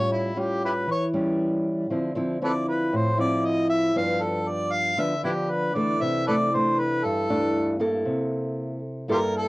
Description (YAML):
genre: bossa nova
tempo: 117 BPM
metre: 4/4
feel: straight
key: unclear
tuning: A4 = 440 Hz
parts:
  - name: mellow harmonica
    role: melody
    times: 0.0-9.5 s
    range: D4 to F5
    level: -25 LUFS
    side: equal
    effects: cassette tape
  - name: nylon-string guitar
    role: accompaniment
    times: 0.0-9.5 s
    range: G2 to A4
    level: -24 LUFS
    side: equal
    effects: cassette tape
room: moderate booth ambience, RT60 0.2 s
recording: home recording on cassette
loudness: -22 LUFS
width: side -20 dB against mid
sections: 0.0-9.5 A section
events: harmonica solo 0.0-9.5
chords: 0.0 A7b13; 1.9 Dm9; 4.0 G7; 6.0 C69; 8.1 C6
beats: 0.36 0.88 1.39 | 1.90 2.41 2.93 3.44 | 3.95 4.47 4.98 5.49 | 6.01 6.52 7.03 7.55 | 8.06 8.57 9.09